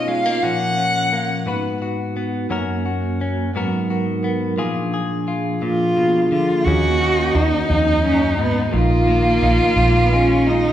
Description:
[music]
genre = acoustic folk-pop ballad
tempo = 58 BPM (dotted quarters)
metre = 6/8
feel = straight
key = Eb minor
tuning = A4 = 440 Hz
[part]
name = rich violin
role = second line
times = 0.0-1.8, 6.7-10.7 s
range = Eb4 to Gb5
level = -21 LUFS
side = equal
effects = none
[part]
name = direct-recorded clean electric guitar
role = accompaniment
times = 0.0-10.7 s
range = Eb2 to Cb5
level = -24 LUFS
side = left 3 dB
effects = none
[part]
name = vibraphone with medium hard mallets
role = arpeggios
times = 0.0-10.7 s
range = F3 to Bb4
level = -23 LUFS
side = right 1 dB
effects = none
[part]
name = dark cello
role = melody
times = 5.6-10.7 s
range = Ab3 to Gb4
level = -19 LUFS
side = equal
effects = none
[part]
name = vintage muted fingered electric bass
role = bass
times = 6.7-10.7 s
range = Bb1 to Eb2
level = -19 LUFS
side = right 1 dB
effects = none
[sound]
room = wet recital hall reverb, RT60 1.3 s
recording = recorded in a church or concert hall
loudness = -16 LUFS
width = side -11 dB against mid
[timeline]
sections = 0.0-6.7 A section; 6.7-10.7 B section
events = violin solo 0.0-6.7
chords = 0.4 Gbmaj7/Bb; 1.5 Abm7; 2.5 Gb; 3.5 Abm9; 4.6 Bb7; 6.7 Ebm7; 8.7 Bb7sus4

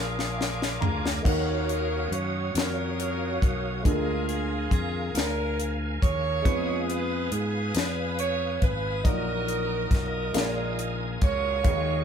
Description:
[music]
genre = slow gospel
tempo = 46 BPM (dotted quarters)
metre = 6/8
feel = straight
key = Eb minor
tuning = A4 = 441 Hz
[part]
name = bright saxophone section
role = melody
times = 0.0-12.0 s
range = Db4 to Db5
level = -31 LUFS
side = right 2 dB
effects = none
[part]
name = clear upright piano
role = accompaniment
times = 0.0-12.0 s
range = Bb2 to Bb5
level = -34 LUFS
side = right 1 dB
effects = none
[part]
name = bright tonewheel organ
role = sustained chords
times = 0.0-12.0 s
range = Gb4 to Eb6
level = -34 LUFS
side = right 1 dB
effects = fast rotary speaker, chorus vibrato
[part]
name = fingered electric bass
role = bass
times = 0.0-12.0 s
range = Ab1 to Ab2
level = -31 LUFS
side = left 1 dB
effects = none
[part]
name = tight funk drum kit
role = drums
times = 0.2-11.8 s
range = crash cymbal, hi-hat, kick drum, snare drum, toms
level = -26 LUFS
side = left 1 dB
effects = none
[sound]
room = moderate studio reverb, RT60 0.5 s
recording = band playing live in one room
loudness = -24 LUFS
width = side -7 dB against mid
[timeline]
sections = 0.0-1.3 A section; 1.3-12.0 A section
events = drum fill 0.0-1.3; upright piano fill 0.0-1.3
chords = 0.0 Bb7; 1.3 Ebm9; 3.9 Bb7/D; 6.5 Fm7b5; 9.0 Ebm/Bb; 10.3 Bb7sus4

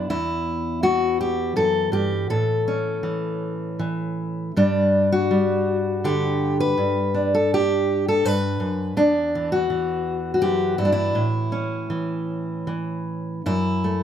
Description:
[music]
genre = folk, solo fingerstyle acoustic guitar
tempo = 81 BPM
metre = 3/4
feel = rubato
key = E dorian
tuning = A4 = 440 Hz
[part]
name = fingerpicked steel-string acoustic guitar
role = solo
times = 0.0-14.0 s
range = E2 to B4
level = -20 LUFS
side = equal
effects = none
[sound]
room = light reverb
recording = none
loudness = -20 LUFS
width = side -9 dB against mid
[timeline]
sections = 0.0-13.5 A section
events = none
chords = 0.1 Em; 2.3 A; 4.5 G; 9.0 Em; 11.2 A; 13.5 F#m7

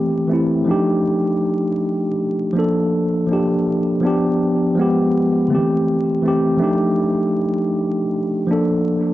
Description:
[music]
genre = hip hop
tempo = 81 BPM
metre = 4/4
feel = swing 61% on 16ths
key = unclear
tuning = A4 = 440 Hz
[part]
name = mellow tine electric piano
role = solo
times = 0.0-9.1 s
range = D3 to A4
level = -16 LUFS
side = equal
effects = medium stereo tremolo, cassette tape, tape echo
[sound]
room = light reverb, digital ambience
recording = vinyl crackle, nothing above 7.7 kHz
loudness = -16 LUFS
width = side -15 dB against mid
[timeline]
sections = 0.0-9.1 A section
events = none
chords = 0.0 C6; 0.7 F13; 2.5 Bbmaj7/F; 4.0 G7; 4.8 G7b9; 5.5 C6; 6.6 F13; 8.5 Bbmaj7/F

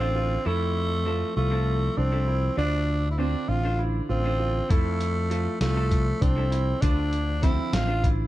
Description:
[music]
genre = progressive instrumental, band music in an uneven meter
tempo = 198 BPM (eighths)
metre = 7/8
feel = straight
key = unclear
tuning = A4 = 440 Hz
[part]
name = growling tenor saxophone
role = melody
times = 0.0-8.1 s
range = A3 to F4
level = -28 LUFS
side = equal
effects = ping-pong delay
[part]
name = vintage hollow-body jazz guitar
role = accompaniment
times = 0.0-8.3 s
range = D3 to C5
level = -34 LUFS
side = equal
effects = none
[part]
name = warm baby grand piano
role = arpeggios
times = 0.0-8.2 s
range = C4 to F4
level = -33 LUFS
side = right 6 dB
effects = none
[part]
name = fretless electric bass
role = bass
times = 0.0-8.2 s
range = A1 to F2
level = -26 LUFS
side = equal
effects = none
[part]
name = boom bap sampler-style drum kit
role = drums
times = 4.7-8.2 s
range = hi-hat, kick drum, snare drum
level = -24 LUFS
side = equal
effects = none
[sound]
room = light reverb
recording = dark, warm production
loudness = -22 LUFS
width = side -15 dB against mid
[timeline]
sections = 0.0-8.3 A section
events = none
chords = 0.0 Fmaj7; 6.8 Dm7

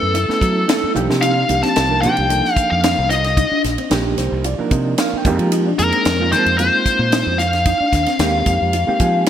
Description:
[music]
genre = electric jazz fusion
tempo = 112 BPM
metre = 4/4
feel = straight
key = unclear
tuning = A4 = 440 Hz
[part]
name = bluesy overdriven lead guitar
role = melody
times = 0.0-9.2 s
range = A4 to A5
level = -17 LUFS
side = left 2 dB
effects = distortion
[part]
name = overdriven reed electric piano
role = accompaniment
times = 0.0-9.3 s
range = F3 to Bb5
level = -22 LUFS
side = right 4 dB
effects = fast tremolo
[part]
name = modern bright fingered electric bass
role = bass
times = 0.0-9.2 s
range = Bb1 to Gb3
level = -20 LUFS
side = right 1 dB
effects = none
[part]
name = mellow electric guitar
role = stabs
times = 0.1-9.3 s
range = C4 to F4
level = -26 LUFS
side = left 1 dB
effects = lush chorus, digital delay
[part]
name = tight funk drum kit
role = drums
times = 0.1-9.3 s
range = hi-hat, kick drum, ride cymbal, snare drum, toms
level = -22 LUFS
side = equal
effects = gated reverb
[sound]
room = moderate lush hall reverb, RT60 2.1 s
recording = bright 1980s-style digital production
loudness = -14 LUFS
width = side -10 dB against mid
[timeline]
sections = 0.0-9.3 A section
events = drum fill 1.0; reed electric piano fill 3.9-5.5, 8.7-9.3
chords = 0.0 Gbm11; 1.0 Cm11; 5.3 Fm11

